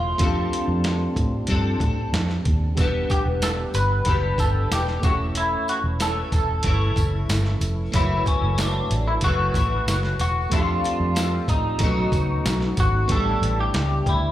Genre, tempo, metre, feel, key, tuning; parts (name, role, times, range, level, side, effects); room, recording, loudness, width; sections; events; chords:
indie pop, bedroom pop; 93 BPM; 4/4; straight; A4 = 441 Hz
clean electric guitar; melody; 0.0-14.3 s; C#4 to B4; -26 LUFS; left 1 dB; analog chorus, slapback echo, digital delay
picked steel-string acoustic guitar; accompaniment; 0.0-14.3 s; F#2 to A4; -29 LUFS; left 3 dB; ensemble chorus, warbly pitch drift, slapback echo
soft electric-piano-like synth keys; accompaniment; 0.0-14.3 s; F#3 to F#5; -32 LUFS; right 5 dB; chorus, slapback echo
vintage muted fingered electric bass; bass; 0.0-14.3 s; E1 to A2; -23 LUFS; equal
boom bap sampler-style drum kit; drums; 0.2-14.2 s; hi-hat, kick drum, snare drum; -24 LUFS; equal
tambourine; percussion; 2.8-12.9 s; -38 LUFS; right 2 dB
little or no reverb; live gig heard through the venue's PA, club reverb; -20 LUFS; side -13 dB against mid
0.0-13.1 A section; 13.1-14.3 B section
0.2 F6; 2.8 Em7; 5.0 A/E; 7.9 F#m7; 10.5 F6; 11.8 B7; 13.1 A7sus4